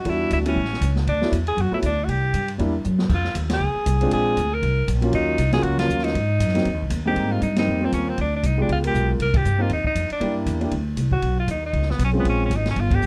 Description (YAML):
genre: jazz, small-group swing and bop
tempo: 236 BPM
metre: 4/4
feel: swing 58% on 8ths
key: Ab major from 7.2 s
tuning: A4 = 440 Hz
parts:
  - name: edgy alto saxophone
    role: melody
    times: 0.0-13.1 s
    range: B3 to Bb4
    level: -27 LUFS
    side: equal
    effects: none
  - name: warm concert grand piano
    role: accompaniment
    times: 0.0-12.5 s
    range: Ab2 to Bb4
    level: -27 LUFS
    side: equal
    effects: none
  - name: upright bass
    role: bass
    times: 0.1-13.1 s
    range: G1 to Ab2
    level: -25 LUFS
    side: equal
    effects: none
  - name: open jazz drum kit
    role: drums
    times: 0.1-13.1 s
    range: crash cymbal, hi-hat, kick drum, ride cymbal, snare drum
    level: -31 LUFS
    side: equal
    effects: none
room: light reverb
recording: dark, warm production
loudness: -22 LUFS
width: mono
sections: 0.0-7.2 A section; 7.2-13.1 B section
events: drum fill 2.8; band accent 3.5, 5.8, 7.5, 9.3, 12.9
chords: 0.1 Em7; 0.6 A; 1.1 D6; 2.1 C7; 3.1 Fm7; 4.1 Bb7; 5.1 Ebm7; 6.1 Ab7; 7.2 Abmaj9; 8.2 Dm7b5; 8.7 Db7#11; 9.2 Cm; 10.2 C9; 11.2 Badd9; 12.2 Bbm9